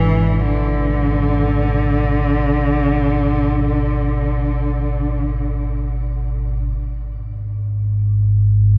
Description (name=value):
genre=dark ambient drone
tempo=free time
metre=none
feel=none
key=unclear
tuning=A4 = 439 Hz
part: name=rich cello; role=melody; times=0.0-5.7 s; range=D3 to E3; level=-22 LUFS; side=equal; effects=shimmer reverb, tape echo
part: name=deep rumbling drone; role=drone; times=0.0-8.8 s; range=G#1 to B2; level=-20 LUFS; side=equal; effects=built-in reverb, lush chorus
room=wet cathedral reverb, RT60 5.2 s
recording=worn, warbling old tape, cassette tape, warbly pitch drift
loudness=-19 LUFS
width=mono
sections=0.0-6.8 A section; 6.8-8.8 B section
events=none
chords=0.0 G#m; 6.8 N.C.